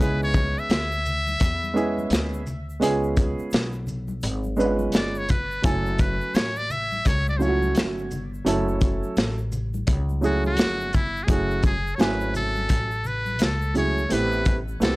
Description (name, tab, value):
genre	hip hop, jazz-hop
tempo	85 BPM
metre	4/4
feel	swing 63% on 16ths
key	F# minor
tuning	A4 = 440 Hz
part	trumpet with metal mute	melody	0.0-15.0 s	E4 to E5	-28 LUFS	left 1 dB	analog delay
part	dark concert grand piano	accompaniment	0.0-15.0 s	F#3 to G#5	-25 LUFS	right 2 dB	none
part	upright bass	bass	0.0-15.0 s	F#1 to E2	-28 LUFS	equal	none
part	tube shaker and congas	percussion	0.0-15.0 s	none	-38 LUFS	left 2 dB	none
part	crunchy breakbeat drum kit	drums	0.3-15.0 s	hi-hat, kick drum, shaker, snare drum	-22 LUFS	equal	none
room	light reverb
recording	dry, gritty hardware recording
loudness	-21 LUFS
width	side -21 dB against mid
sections	0.0-11.3 A section; 11.3-15.0 B section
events	muted trumpet solo 0.0-11.3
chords	0.0 C#m7; 2.8 C#7; 5.6 F#m7; 14.1 Am7